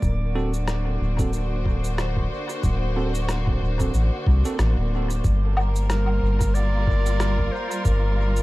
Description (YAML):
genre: ambient dub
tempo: 92 BPM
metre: 4/4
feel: swing 57% on 16ths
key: G minor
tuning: A4 = 442 Hz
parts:
  - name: rich studio string section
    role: sustained chords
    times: 0.0-8.4 s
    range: D3 to C5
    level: -30 LUFS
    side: equal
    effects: none
  - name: soft dub sub bass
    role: bass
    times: 0.0-8.4 s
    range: D1 to C2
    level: -22 LUFS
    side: equal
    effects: none
  - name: electronic cabasa, rim click and woodblock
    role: drums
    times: 0.0-8.4 s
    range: none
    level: -32 LUFS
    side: equal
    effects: overdrive, studio ambience, dub echo
  - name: electronic kick drum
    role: drums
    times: 0.0-8.0 s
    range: none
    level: -24 LUFS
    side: equal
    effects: overdrive, studio ambience
  - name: drifting glass-harmonics texture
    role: texture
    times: 0.0-5.3 s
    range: D5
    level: -39 LUFS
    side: right 5 dB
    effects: chorus, built-in reverb
  - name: bell-like tine electric piano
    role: stabs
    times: 0.4-4.6 s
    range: C4 to A4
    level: -33 LUFS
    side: right 4 dB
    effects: dub echo
  - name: clear clarinet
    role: melody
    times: 5.9-8.4 s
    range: Bb4 to D5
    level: -28 LUFS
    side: right 1 dB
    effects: dub echo
room: digital ambience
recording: echo-heavy mix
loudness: -20 LUFS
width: side -19 dB against mid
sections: 0.0-5.2 A section; 5.2-8.4 B section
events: none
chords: 0.0 D7; 5.2 Gm7